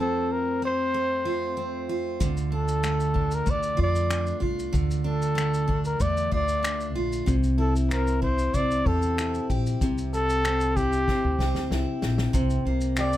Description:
acoustic pop; 95 BPM; 4/4; straight; A4 = 440 Hz
breathy trumpet; melody; 0.0-13.2 s; G4 to D5; -27 LUFS; equal
picked steel-string acoustic guitar; accompaniment; 0.0-13.2 s; F2 to G4; -28 LUFS; equal
upright bass; bass; 2.2-13.2 s; Bb1 to F2; -27 LUFS; equal
natural country drum kit; drums; 2.2-13.2 s; finger snaps, kick drum, shaker, snare drum; -30 LUFS; left 1 dB
little or no reverb; close, detailed microphones; -23 LUFS; side -13 dB against mid
0.0-12.3 A section
drum fill 11.1-12.3
0.0 F; 2.2 Dm; 7.3 C; 12.3 C7

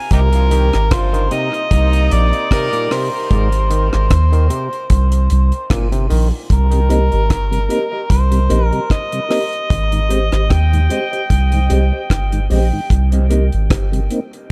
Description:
dub reggae; 75 BPM; 4/4; swing 55% on 16ths; A4 = 440 Hz
overdriven harmonica; melody; 0.0-12.5 s; Eb4 to Ab5; -24 LUFS; equal; dub echo
auto-wah clav; arpeggios; 0.1-6.3 s; Ab2 to Eb3; -28 LUFS; equal; overdrive, dub echo
soft dub sub bass; bass; 0.1-14.1 s; G1 to Eb2; -16 LUFS; equal
deep reggae drum kit; drums; 0.1-14.5 s; hi-hat, kick drum, rim click; -20 LUFS; equal
warm horn section; second line; 0.3-3.1 s; C3 to Bb4; -27 LUFS; equal; dub echo
mellow tonewheel organ; accompaniment; 6.7-14.2 s; Ab2 to G4; -26 LUFS; equal; chorus vibrato, slow rotary speaker
mellow electric guitar; accompaniment; 6.9-13.4 s; G4 to Eb5; -27 LUFS; equal; dub echo
little or no reverb; echo-heavy mix; -16 LUFS; mono
0.0-6.5 A section; 6.5-14.5 B section
break 0.0-6.5
0.1 Cm7

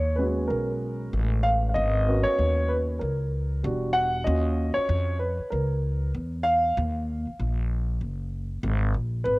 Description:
hip hop, jazz-hop; 96 BPM; 4/4; swing 60% on 16ths; G# dorian; A4 = 440 Hz
dark baby grand piano; accompaniment; 0.0-9.4 s; G3 to F#5; -26 LUFS; equal; cassette tape
upright bass; bass; 0.0-9.4 s; E1 to E#2; -26 LUFS; equal
moderate spring reverb, RT60 2.5 s; home recording on cassette; -23 LUFS; side -22 dB against mid
0.0-9.3 A section
grand piano solo 0.0-9.3; break 6.8-9.3
0.0 G#m11; 3.6 Em9; 4.3 D#m9; 8.6 G#sus2

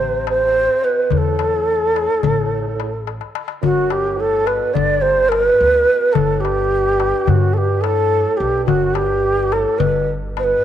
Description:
Turkish makam ensemble; 214 BPM (eighths); 9/8; straight; A makam nihavent, G makam rast from 3.6 s; A4 = 440 Hz
breathy mellow ney; melody; 0.0-10.6 s; F#4-21c to D5; -16 LUFS; equal
mellow bassoon; second line; 0.0-10.6 s; F#2 to D3; -25 LUFS; right 11 dB
upright bass; bass; 0.0-10.5 s; G1 to G2; -23 LUFS; equal
darbuka; percussion; 0.3-10.5 s; -22 LUFS; left 9 dB
moderate spring reverb, RT60 2.2 s; 1960s-style stereo with parts hard left and right; -14 LUFS; side -10 dB against mid
0.0-3.6 A section; 3.6-10.6 B section
drum fill 3.1-3.6

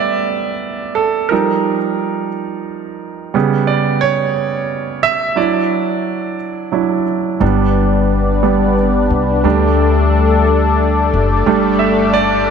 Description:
pop; 59 BPM (dotted quarters); 6/8; straight; G major; A4 = 440 Hz
clear concert grand piano; accompaniment; 0.0-12.5 s; C#3 to E5; -15 LUFS; right 6 dB
warm analog pad; sustained chords; 7.4-12.5 s; G3 to D5; -15 LUFS; left 3 dB; chorus
upright bass; bass; 7.4-12.5 s; F#1 to D2; -16 LUFS; left 3 dB
wet echo chamber reverb, RT60 2.8 s; -13 LUFS; side -6 dB against mid
0.0-12.5 A section
grand piano solo 0.0-12.5
0.0 Gadd9; 1.3 Ebadd9; 3.3 C#m7b5; 5.4 Dadd9; 7.4 G; 9.4 Dsus4; 11.5 Gsus2

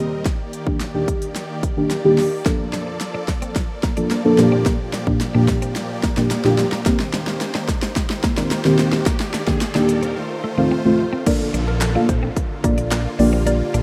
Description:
dance-pop; 109 BPM; 4/4; straight; Bb major; A4 = 441 Hz
deep mellow chord stab; accompaniment; 0.0-13.8 s; Bb2 to F5; -21 LUFS; equal; chorus, phaser, sidechain pumping
supersaw chords; sustained chords; 0.0-13.8 s; Bb2 to Eb5; -30 LUFS; equal; sidechain pumping
pop drum kit; drums; 0.3-13.8 s; crash cymbal, handclaps, hi-hat, kick drum, snare drum; -25 LUFS; equal
twelve-string electric guitar; riff; 2.5-13.8 s; A3 to D4; -30 LUFS; equal; analog chorus
riser and downlifter; sound effects; 7.1-13.8 s; -38 LUFS; equal
mallet-like synth pluck; melody; 11.3-13.6 s; Bb4 to D5; -30 LUFS; equal; chorus, tape echo
fat analog bass; bass; 11.5-13.8 s; Bb1; -23 LUFS; equal; sidechain pumping
light reverb; rough home demo mix; -20 LUFS; mono
0.0-11.3 A section; 11.3-13.8 B section
build-up 0.0-11.3; drum fill 0.0-10.2; drop 11.3-13.8
0.3 Ebmaj7; 2.5 Bbmaj7; 4.4 Gm7/Bb; 6.9 Ebmaj7; 10.2 F7; 11.3 Bbmaj7; 13.2 Gm7/Bb

